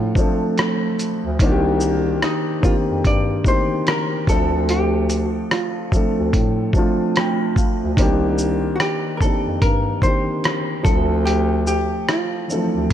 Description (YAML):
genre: lo-fi hip hop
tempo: 73 BPM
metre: 4/4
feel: swing 64% on 16ths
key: unclear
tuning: A4 = 443 Hz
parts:
  - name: vintage hollow-body jazz guitar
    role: melody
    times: 0.0-12.9 s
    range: Eb4 to D5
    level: -25 LUFS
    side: equal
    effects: diffuse ambient delay
  - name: dark upright piano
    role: accompaniment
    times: 0.0-12.9 s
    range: Eb3 to A5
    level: -20 LUFS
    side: equal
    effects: none
  - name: mellow bass clarinet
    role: bass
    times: 0.0-12.9 s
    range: C2 to A2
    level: -23 LUFS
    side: equal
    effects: none
  - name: dusty soul sampler-style drum kit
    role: drums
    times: 0.2-12.9 s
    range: hi-hat, kick drum, rim click, shaker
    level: -20 LUFS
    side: equal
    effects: overdrive
room: light reverb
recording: none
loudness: -17 LUFS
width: side -10 dB against mid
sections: 0.0-12.9 A section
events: none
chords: 0.0 Dm7; 1.4 Cm9; 4.3 Dm7; 8.0 Cm9; 10.8 Dm7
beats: 0.57 | 1.39 2.22 3.04 3.86 | 4.68 5.50 6.33 7.15 | 7.97 8.79 9.61 10.44 | 11.26 12.08 12.90